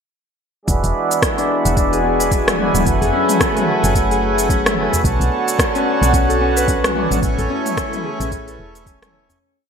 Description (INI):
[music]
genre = organic downtempo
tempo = 110 BPM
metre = 4/4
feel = swing 58% on 16ths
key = E mixolydian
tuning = A4 = 440 Hz
[part]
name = pedal harmonium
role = accompaniment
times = 0.7-9.4 s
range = D3 to G#5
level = -20 LUFS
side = right 4 dB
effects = sidechain pumping, low-pass filter, ping-pong delay
[part]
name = warm analog pad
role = sustained chords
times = 0.7-9.4 s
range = E3 to G#5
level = -25 LUFS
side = equal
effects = chorus, vintage 12-bit sampler grit, sidechain pumping
[part]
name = woody FM bass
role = bass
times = 0.7-9.4 s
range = D1 to B1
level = -21 LUFS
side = equal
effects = sidechain pumping
[part]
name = electronic kick drum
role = drums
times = 0.7-9.0 s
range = none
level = -21 LUFS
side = equal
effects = overdrive
[part]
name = organic electronic drum kit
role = drums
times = 0.7-9.4 s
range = cabasa, hi-hat, rim click, toms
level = -20 LUFS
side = equal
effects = overdrive, gated reverb
[part]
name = Celtic harp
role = arpeggios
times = 1.4-9.7 s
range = C#4 to C#5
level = -21 LUFS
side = left 5 dB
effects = low-pass filter, ping-pong delay
[part]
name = udu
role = percussion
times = 3.0-9.4 s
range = none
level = -26 LUFS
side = right 1 dB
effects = none
[sound]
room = moderate plate reverb, RT60 1.6 s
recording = bright 1980s-style digital production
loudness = -15 LUFS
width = side -6 dB against mid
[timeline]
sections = 0.7-9.4 groove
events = filter sweep on harmonium 0.7-9.4; fade-out 6.5-9.4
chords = 0.7 E9; 2.9 F#m11; 5.0 Bm9; 7.2 Amaj7